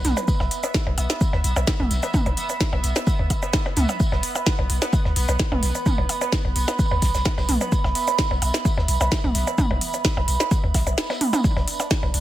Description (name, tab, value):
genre	minimal techno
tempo	129 BPM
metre	4/4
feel	straight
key	B minor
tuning	A4 = 440 Hz
part	punchy sub bass	bass	0.0-12.2 s	B1 to D2	-23 LUFS	equal	sidechain pumping
part	minimal click drum kit	drums	0.0-12.2 s	hi-hat, shaker, snare drum	-26 LUFS	equal	overdrive
part	warm soul drum kit	drums	0.0-12.2 s	hi-hat, snare drum, tambourine	-37 LUFS	left 1 dB	high-pass filter on hats, high-pass filter on snare, high-pass filter on perc, high-pass filter on room
part	electronic toms and percussion blips	percussion	0.0-12.1 s	none	-27 LUFS	equal	digital delay
part	pulsing gated texture	texture	0.0-12.2 s	B3 to E5	-32 LUFS	right 1 dB	chorus, built-in reverb, sidechain pumping
part	warbly tape-like pad	texture	0.0-12.2 s	B5	-29 LUFS	right 6 dB	chorus, built-in reverb, sidechain pumping
part	electronic kick drum	drums	0.3-12.0 s	none	-22 LUFS	equal	overdrive
room	light reverb, small room ambience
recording	none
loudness	-19 LUFS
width	side -14 dB against mid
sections	0.0-12.2 A section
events	none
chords	0.0 B5